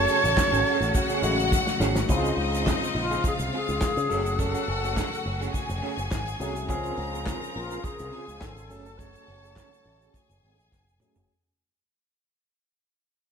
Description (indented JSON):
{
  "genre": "disco",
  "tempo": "104 BPM",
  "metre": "4/4",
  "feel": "straight",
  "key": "unclear",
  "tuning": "A4 = 443 Hz",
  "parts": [
    { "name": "bright alto flute", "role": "melody", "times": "0.0-10.7 s", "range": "F4 to Db5", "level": "-28 LUFS", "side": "right 1 dB", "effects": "low-pass filter" },
    { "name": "clear studio string section", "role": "second line", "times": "0.0-11.3 s", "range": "Eb4 to Bb5", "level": "-31 LUFS", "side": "left 3 dB", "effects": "none" },
    { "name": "barky tine electric piano", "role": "accompaniment", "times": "0.0-11.3 s", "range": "Db3 to A4", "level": "-33 LUFS", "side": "left 4 dB", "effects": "overdrive, low-pass filter" },
    { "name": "electric guitar through a small old amp", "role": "accompaniment", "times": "0.0-11.2 s", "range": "A3 to Ab4", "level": "-34 LUFS", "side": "right 8 dB", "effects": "tremolo, low-pass filter" },
    { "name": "clear studio string section", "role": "sustained chords", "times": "0.0-11.3 s", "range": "Db3 to C5", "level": "-37 LUFS", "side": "right 2 dB", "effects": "low-pass filter" },
    { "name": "picked electric bass with an envelope filter", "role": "bass", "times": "0.0-11.3 s", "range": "F1 to Db3", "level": "-31 LUFS", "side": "equal", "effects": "none" },
    { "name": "warm soul drum kit", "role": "drums", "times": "0.1-11.3 s", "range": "handclaps, hi-hat, kick drum, snare drum, toms", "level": "-29 LUFS", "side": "equal", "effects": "none" },
    { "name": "tube shaker", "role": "percussion", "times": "0.1-11.3 s", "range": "none", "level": "-43 LUFS", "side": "right 7 dB", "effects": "none" }
  ],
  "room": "moderate stone room reverb, RT60 1.3 s",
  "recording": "band playing live in one room",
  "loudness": "-23 LUFS",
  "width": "side -6 dB against mid",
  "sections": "0.0-2.1 A section; 2.1-11.3 B section",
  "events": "drum fill 1.5-2.1, 10.7-11.3; fade-out 2.1-11.3; filter sweep 2.1-11.3",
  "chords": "0.0 Gbmadd9; 2.1 Dbmaj7; 4.1 Gbmadd9; 6.7 Dbmaj7; 8.7 Gbmadd9",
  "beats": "0.37 0.94 1.52 | 2.09 2.66 3.24 3.81 | 4.39 4.96 5.54 6.11 | 6.69 7.27 7.84 8.42 | 8.99 9.57 10.15 10.73"
}